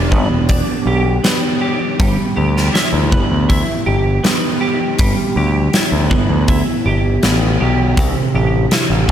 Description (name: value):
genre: quiet-loud alternative rock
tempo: 80 BPM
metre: 4/4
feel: straight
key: E minor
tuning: A4 = 440 Hz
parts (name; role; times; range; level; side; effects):
- twelve-string electric guitar; arpeggios; 0.0-9.1 s; C3 to G4; -18 LUFS; right 2 dB; ensemble chorus, slapback echo
- overdriven picked electric bass; bass; 0.0-9.1 s; E1 to D2; -16 LUFS; equal; none
- huge arena drum kit; drums; 0.1-9.1 s; hi-hat, kick drum, snare drum; -17 LUFS; equal; none
room: little or no reverb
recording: none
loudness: -13 LUFS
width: side -10 dB against mid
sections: 0.0-9.1 A section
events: none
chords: 0.0 G; 2.0 Em/G; 8.0 C